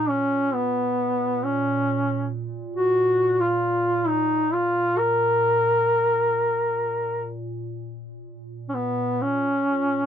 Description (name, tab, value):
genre	caucasian folk, Caucasian lament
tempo	free time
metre	none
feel	none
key	Bb phrygian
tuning	A4 = 440 Hz
part	warm duduk	melody	0.0-10.1 s	Cb4 to Bb4	-21 LUFS	equal	none
part	warbly tape-like pad	drone	0.0-10.1 s	Bb2	-31 LUFS	right 2 dB	chorus, built-in reverb
room	light reverb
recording	dry, close 1970s-style studio recording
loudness	-20 LUFS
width	side -9 dB against mid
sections	0.0-8.3 A section; 8.3-10.1 B section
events	none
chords	none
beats	free time